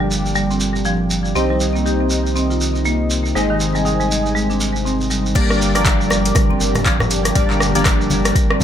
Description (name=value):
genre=afro house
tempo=120 BPM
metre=4/4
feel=swing 59% on 16ths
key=G phrygian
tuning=A4 = 440 Hz
part: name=warm analog pad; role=sustained chords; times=0.0-8.6 s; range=Bb2 to Ab5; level=-25 LUFS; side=equal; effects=chorus, tremolo, sidechain pumping
part: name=marimba with hard mallets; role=arpeggios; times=0.0-8.6 s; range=D3 to G4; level=-21 LUFS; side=right 1 dB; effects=sidechain pumping, analog delay
part: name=warm analog keys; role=stabs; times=0.0-8.6 s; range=Bb3 to Eb5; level=-22 LUFS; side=left 2 dB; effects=chorus, phaser, sidechain pumping, analog delay
part: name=round analog bass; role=bass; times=0.0-8.6 s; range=G1 to C2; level=-23 LUFS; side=equal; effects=sidechain pumping
part: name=shekere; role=percussion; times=0.1-8.6 s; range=none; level=-26 LUFS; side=right 2 dB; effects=none
part: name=afro-pop drum kit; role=drums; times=5.4-8.6 s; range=crash cymbal, handclaps, hi-hat, rim click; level=-20 LUFS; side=equal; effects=overdrive, low-pass filter on hats, low-pass filter on cymbals, low-pass filter on snare, low-pass filter on room
part: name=electronic kick drum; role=drums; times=5.4-8.5 s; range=none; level=-17 LUFS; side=equal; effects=overdrive
part: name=congas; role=percussion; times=5.4-8.6 s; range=none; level=-25 LUFS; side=left 2 dB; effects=none
room=moderate spring reverb, RT60 1.1 s, digital ambience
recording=echo-heavy mix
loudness=-15 LUFS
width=side -9 dB against mid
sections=0.0-5.4 A section; 5.4-8.6 B section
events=filter sweep on synth keys 0.0-5.4; drop 5.4-8.6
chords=0.0 Gm; 1.4 Cm; 3.4 Ab; 5.4 Gm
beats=0.36 0.86 | 1.36 1.86 2.36 2.86 | 3.36 3.86 4.36 4.86 | 5.36 5.86 6.36 6.86 | 7.36 7.86 8.36